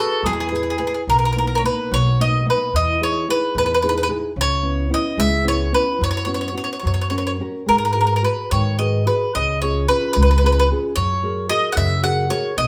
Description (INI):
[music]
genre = italian folk, Italian serenade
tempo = 73 BPM (dotted quarters)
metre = 6/8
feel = rubato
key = B major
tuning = A4 = 440 Hz
[part]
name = bowl-back mandolin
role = melody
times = 0.0-12.7 s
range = G#4 to F#5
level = -22 LUFS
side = equal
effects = none
[part]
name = bright clarinet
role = second line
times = 0.0-1.1 s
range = E4 to F#4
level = -30 LUFS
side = equal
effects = none
[part]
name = nylon-string guitar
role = accompaniment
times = 0.0-12.7 s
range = B2 to B4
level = -27 LUFS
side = equal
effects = none
[part]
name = upright bass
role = bass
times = 0.2-12.7 s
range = B1 to G#2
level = -24 LUFS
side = equal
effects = none
[part]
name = riq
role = percussion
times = 0.3-0.7 s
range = none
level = -32 LUFS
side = equal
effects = none
[sound]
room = wet large studio reverb, RT60 0.9 s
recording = band playing live in one room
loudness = -19 LUFS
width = mono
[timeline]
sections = 0.0-1.1 A section; 1.1-12.7 B section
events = none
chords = 0.0 E; 1.1 Bmaj7; 2.7 Emaj7; 4.4 C#m7; 6.0 F#sus4; 6.8 F#; 7.7 G#m7; 9.3 C#; 11.0 F#add9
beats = 0.23 | 1.08 1.91 | 2.73 3.54 | 4.35 5.17 | 5.99 6.83 | 7.67 8.51 | 9.34 10.16 | 10.97 11.78 | 12.58